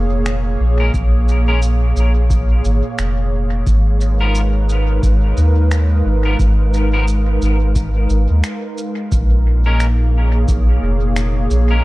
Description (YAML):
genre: ambient dub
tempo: 88 BPM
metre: 4/4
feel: swing 60% on 16ths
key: unclear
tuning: A4 = 440 Hz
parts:
  - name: airy breathy pad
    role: sustained chords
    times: 0.0-11.8 s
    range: A#2 to E#5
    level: -22 LUFS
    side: right 1 dB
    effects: chorus
  - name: soft dub sub bass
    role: bass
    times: 0.0-11.8 s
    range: E#1 to D#2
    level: -14 LUFS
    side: equal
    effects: none
  - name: electronic finger snaps and shaker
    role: drums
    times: 0.3-11.7 s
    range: none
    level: -30 LUFS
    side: equal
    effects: studio reverb, dub echo
  - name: clean electric guitar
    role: stabs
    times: 0.8-11.8 s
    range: E#3 to A#4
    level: -26 LUFS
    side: left 2 dB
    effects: ensemble chorus, dub echo
  - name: electronic kick drum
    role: drums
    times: 0.9-10.6 s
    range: none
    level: -20 LUFS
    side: equal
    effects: none
room: little or no reverb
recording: dark, warm production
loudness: -13 LUFS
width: side -19 dB against mid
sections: 0.0-9.1 A section; 9.1-11.8 B section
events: none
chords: 0.0 A#m7; 3.7 G#m69; 9.1 A#m7